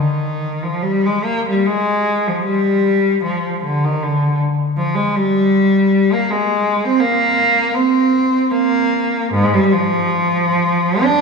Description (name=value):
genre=classical, free, expressive piece for unaccompanied cello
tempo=78 BPM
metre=3/4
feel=uneven beats, rubato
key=unclear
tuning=A4 = 439 Hz
part: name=rich cello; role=solo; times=0.0-11.2 s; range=Ab2 to D4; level=-14 LUFS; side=equal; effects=none
room=wet church reverb, RT60 2.7 s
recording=studio reverb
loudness=-14 LUFS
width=side -4 dB against mid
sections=0.0-11.2 A section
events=none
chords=none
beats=0.85 1.66 | 2.45 3.22 4.00 | 4.76 5.54 6.30 | 7.02 7.77 8.53 | 9.34 10.14 11.05